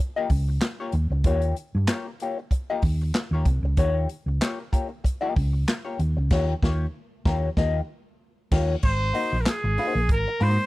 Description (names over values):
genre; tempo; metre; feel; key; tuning
funk; 95 BPM; 4/4; swing 56% on 16ths; Eb mixolydian; A4 = 441 Hz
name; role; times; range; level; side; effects
hollow-body jazz guitar; accompaniment; 0.0-10.6 s; Bb3 to Eb5; -28 LUFS; left 4 dB; wah
hollow-body short-scale fingered electric bass; bass; 0.3-10.6 s; Ab1 to Ab2; -24 LUFS; equal; none
swinging big-band drum kit; drums; 0.3-10.6 s; crash cymbal, handclaps, hi-hat, kick drum, snare drum; -24 LUFS; equal; none
clear trumpet; melody; 8.8-10.7 s; Ab4 to C5; -26 LUFS; right 1 dB; none
room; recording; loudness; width
little or no reverb; dry, close 1970s-style studio recording; -22 LUFS; side -18 dB against mid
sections
0.0-8.8 A section; 8.8-10.7 B section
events
band accent 6.3-8.8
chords
0.0 Eb9; 8.8 Ab9